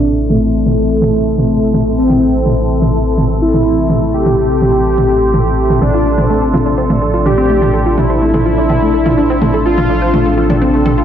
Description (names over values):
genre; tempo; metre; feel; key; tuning
melodic techno; 125 BPM; 4/4; straight; A minor; A4 = 437 Hz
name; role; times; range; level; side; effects
soft supersaw; melody; 0.0-10.3 s; A3 to G4; -15 LUFS; equal; low-pass filter, dub echo
lush unison pad; sustained chords; 0.0-11.0 s; C3 to A4; -20 LUFS; left 1 dB; chorus, phaser
round analog bass; bass; 0.0-11.0 s; A1; -18 LUFS; equal; none
warbly tape-like pad; texture; 0.0-11.0 s; C4 to C6; -18 LUFS; left 1 dB; chorus, built-in reverb
electronic toms; drums; 0.3-11.0 s; none; -18 LUFS; right 1 dB; overdrive
wide unison pluck; arpeggios; 5.8-11.0 s; A3 to C5; -18 LUFS; equal; dub echo
room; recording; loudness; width
moderate digital room reverb, RT60 1.0 s; low-pass filter; -10 LUFS; side -9 dB against mid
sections
0.0-11.0 A section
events
filter sweep on supersaw synth 0.0-11.0; filter sweep on analog synth pad 0.0-11.0; filter sweep 0.0-11.0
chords
0.0 Am; 5.8 Dm7/A